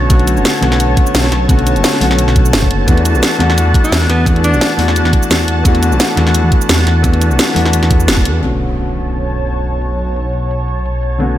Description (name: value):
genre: liquid drum and bass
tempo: 173 BPM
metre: 4/4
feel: swing 54% on 16ths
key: B minor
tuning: A4 = 436 Hz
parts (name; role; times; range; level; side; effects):
- warm concert grand piano; accompaniment; 0.0-11.4 s; D3 to F#4; -17 LUFS; left 2 dB; vintage 12-bit sampler grit, low-pass filter, digital delay
- lush unison pad; sustained chords; 0.0-11.4 s; C#5 to A5; -21 LUFS; equal; chorus, phaser, sidechain pumping
- swelling detuned saw bass; bass; 0.0-11.4 s; E1 to E2; -14 LUFS; equal; none
- drum and bass drum kit; drums; 0.1-11.4 s; hi-hat, shaker, snare drum; -16 LUFS; equal; low-pass filter on hats, studio reverb, low-pass filter on perc, low-pass filter on snare, low-pass filter on cymbals
- electronic kick drum; drums; 0.1-8.2 s; none; -12 LUFS; equal; studio reverb
- clear alto saxophone; melody; 3.8-4.7 s; B3 to E4; -21 LUFS; equal; digital delay
- impact; sound effects; 8.4-9.8 s; none; -28 LUFS; right 1 dB; none
room: light reverb, digital ambience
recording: none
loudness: -10 LUFS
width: side -12 dB against mid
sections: 0.0-8.4 A section; 8.4-11.4 B section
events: drop 0.0-8.4; band accent 8.1; impact 8.4-9.8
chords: 0.0 Bm9; 2.9 E7sus4; 8.4 Bm9